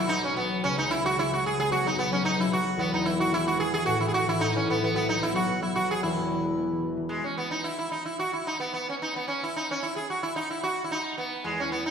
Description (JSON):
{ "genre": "celtic folk", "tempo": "222 BPM", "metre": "4/4", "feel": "swing 53% on 8ths", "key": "E major", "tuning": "A4 = 440 Hz", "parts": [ { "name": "sitar", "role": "melody", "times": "0.0-11.9 s", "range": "G#3 to G#4", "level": "-26 LUFS", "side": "right 1 dB", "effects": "none" }, { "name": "concert harp", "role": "accompaniment", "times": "0.0-11.9 s", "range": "E1 to B3", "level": "-28 LUFS", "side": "left 2 dB", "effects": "none" } ], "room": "wet recital hall reverb, RT60 1.5 s", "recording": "recorded in a church or concert hall", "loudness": "-25 LUFS", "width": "side -6 dB against mid", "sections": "0.0-7.1 A section; 7.1-11.9 B section", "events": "none", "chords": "0.0 B5; 0.6 C#5; 1.7 B5; 2.8 E; 3.9 A5; 4.9 B5; 6.0 E; 7.1 N.C." }